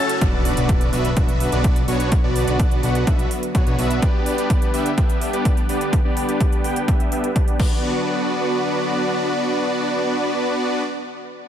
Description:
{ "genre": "EDM, festival progressive house", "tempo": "126 BPM", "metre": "4/4", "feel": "straight", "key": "B minor", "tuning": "A4 = 440 Hz", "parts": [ { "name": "lush unison pad", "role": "sustained chords", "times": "0.0-10.8 s", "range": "C#3 to G4", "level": "-28 LUFS", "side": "equal", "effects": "chorus, sidechain pumping" }, { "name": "supersaw chords", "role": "riff", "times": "0.0-10.8 s", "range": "B3 to A5", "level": "-22 LUFS", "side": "equal", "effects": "sidechain pumping, low-pass filter, digital delay" }, { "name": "big-room dance drum kit", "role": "drums", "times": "0.1-7.7 s", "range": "crash cymbal, hi-hat", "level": "-33 LUFS", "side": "right 3 dB", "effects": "overdrive" }, { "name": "fat analog bass", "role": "bass", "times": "0.2-4.0 s", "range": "B1", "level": "-23 LUFS", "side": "equal", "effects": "sidechain pumping" }, { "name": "electronic kick drum", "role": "drums", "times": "0.2-7.7 s", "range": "none", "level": "-18 LUFS", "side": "equal", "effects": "overdrive" }, { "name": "impact", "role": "sound effects", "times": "0.2-2.1 s", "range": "none", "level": "-31 LUFS", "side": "equal", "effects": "none" } ], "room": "light reverb", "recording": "none", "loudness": "-17 LUFS", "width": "side -10 dB against mid", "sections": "0.2-7.8 A section; 7.8-11.5 B section", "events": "break 0.0; impact 0.2-2.1; filter sweep on supersaw synth 0.2-7.8", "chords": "0.2 Bm; 4.0 G; 7.6 Bm" }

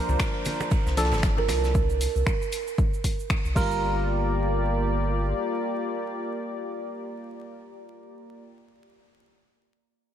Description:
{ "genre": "deep house", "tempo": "116 BPM", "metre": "4/4", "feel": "swing 58% on 16ths", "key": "G minor", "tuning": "A4 = 439 Hz", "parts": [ { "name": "warm analog pad", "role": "sustained chords", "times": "0.0-8.4 s", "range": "Bb3 to D5", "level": "-32 LUFS", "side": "left 2 dB", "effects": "chorus, sidechain pumping" }, { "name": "percussive organ stab", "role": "stabs", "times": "0.0-8.4 s", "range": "F3 to Bb4", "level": "-30 LUFS", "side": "right 1 dB", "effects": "chorus, sidechain pumping, ping-pong delay" }, { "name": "round analog bass", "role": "bass", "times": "0.1-5.3 s", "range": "G1 to C2", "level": "-26 LUFS", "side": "equal", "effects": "sidechain pumping" }, { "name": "natural country drum kit", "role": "drums", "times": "0.1-1.7 s", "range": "ride cymbal, snare drum", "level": "-39 LUFS", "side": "right 3 dB", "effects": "high-pass filter on cymbals, high-pass filter on snare, high-pass filter on room" }, { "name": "cabasa", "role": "percussion", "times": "0.1-3.8 s", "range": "none", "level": "-44 LUFS", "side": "right 6 dB", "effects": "none" }, { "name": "congas", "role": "percussion", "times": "0.1-1.6 s", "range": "none", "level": "-37 LUFS", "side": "right 2 dB", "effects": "none" }, { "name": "electronic kick drum", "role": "drums", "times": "0.2-3.7 s", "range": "none", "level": "-25 LUFS", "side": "equal", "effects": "none" }, { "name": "punchy analog drum machine", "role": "drums", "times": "0.2-3.7 s", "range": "crash cymbal, finger snaps, hi-hat", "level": "-34 LUFS", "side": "left 2 dB", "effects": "none" }, { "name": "buzzing kalimba", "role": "melody", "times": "1.4-1.5 s", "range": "Bb4", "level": "-32 LUFS", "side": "right 12 dB", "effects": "diffuse ambient delay" } ], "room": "light reverb, small room ambience", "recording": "vinyl crackle", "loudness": "-23 LUFS", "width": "side -10 dB against mid", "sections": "0.0-3.8 A section; 3.8-8.0 B section", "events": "drop 0.0-3.8", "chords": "0.0 C9sus4; 3.6 Gm7" }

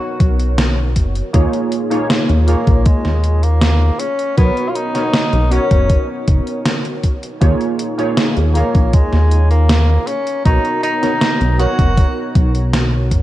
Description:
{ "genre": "vaporwave", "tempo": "79 BPM", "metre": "4/4", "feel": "straight", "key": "B lydian", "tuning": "A4 = 441 Hz", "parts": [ { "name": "warm tenor saxophone", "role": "melody", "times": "0.0-12.3 s", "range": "G#3 to F#4", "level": "-21 LUFS", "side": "left 1 dB", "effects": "analog delay" }, { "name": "warbly lo-fi synth keys", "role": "accompaniment", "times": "0.0-13.2 s", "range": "A#3 to C#5", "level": "-20 LUFS", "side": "right 1 dB", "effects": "wide subtle chorus, analog delay" }, { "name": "chorused synth bass", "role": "bass", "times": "0.2-13.2 s", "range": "F#1 to D#2", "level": "-14 LUFS", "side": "equal", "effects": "none" }, { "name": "electronic kick drum", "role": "drums", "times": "0.2-13.2 s", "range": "none", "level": "-13 LUFS", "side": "equal", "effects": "overdrive, vintage 12-bit sampler grit" }, { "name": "gated 80s digital drum machine", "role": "drums", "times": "0.2-13.2 s", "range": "hi-hat, snare drum", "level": "-20 LUFS", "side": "equal", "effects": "gated reverb, gated reverb snare, overdrive, vintage 12-bit sampler grit" } ], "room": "little or no reverb", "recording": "none", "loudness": "-13 LUFS", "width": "side -14 dB against mid", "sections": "0.0-13.2 A section", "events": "none", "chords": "0.0 Bmaj9; 1.3 D#9sus4; 4.0 Bmaj9; 7.4 D#9sus4; 10.1 Bmaj9" }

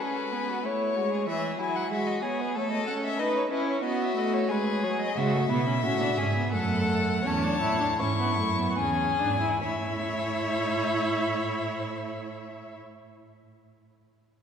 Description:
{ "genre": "classical, baroque-style fugue for string quartet", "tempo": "68-94 BPM", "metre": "3/4", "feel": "straight", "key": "A major", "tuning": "A4 = 439 Hz", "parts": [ { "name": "warm violin", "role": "melody", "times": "0.0-12.8 s", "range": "B4 to C#6", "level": "-30 LUFS", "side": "left 5 dB", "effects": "none" }, { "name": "warm violin", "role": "second line", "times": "0.0-12.8 s", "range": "E4 to C#5", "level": "-31 LUFS", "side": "left 2 dB", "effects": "none" }, { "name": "warm viola", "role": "accompaniment", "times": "0.0-12.8 s", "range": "E3 to E4", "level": "-30 LUFS", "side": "right 3 dB", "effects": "none" }, { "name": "warm cello", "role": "bass", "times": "5.2-12.8 s", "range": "E2 to C#3", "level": "-30 LUFS", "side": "right 2 dB", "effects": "none" } ], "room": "wet church reverb, RT60 2.9 s", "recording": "recorded in a church or concert hall", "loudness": "-25 LUFS", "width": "side -7 dB against mid", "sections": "0.0-9.6 A section; 9.6-14.4 B section", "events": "slowing down 4.2-9.6", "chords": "0.0 E (rootless); 0.6 A; 1.3 E; 2.6 A; 3.2 B7; 4.5 B69; 5.2 C#m; 6.5 F#m; 7.2 A/E; 8.8 E7; 9.6 A" }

